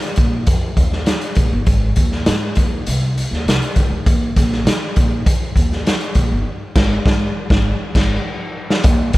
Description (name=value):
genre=uptempo 1960s-style soul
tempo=100 BPM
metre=4/4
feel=straight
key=unclear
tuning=A4 = 440 Hz
part: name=upright bass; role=bass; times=0.0-9.2 s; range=G1 to Eb3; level=-20 LUFS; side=equal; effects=none
part: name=raw garage drum kit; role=drums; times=0.0-9.2 s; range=crash cymbal, hi-hat, kick drum, snare drum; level=-16 LUFS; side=equal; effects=none
room=little or no reverb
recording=none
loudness=-14 LUFS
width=side -18 dB against mid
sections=0.0-8.8 A section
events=band accent 6.5-8.8; drum fill 8.2-8.8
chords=none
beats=0.47 1.07 | 1.67 2.27 2.87 3.46 | 4.06 4.66 5.26 5.86 | 6.46 7.05 7.65 8.25 | 8.85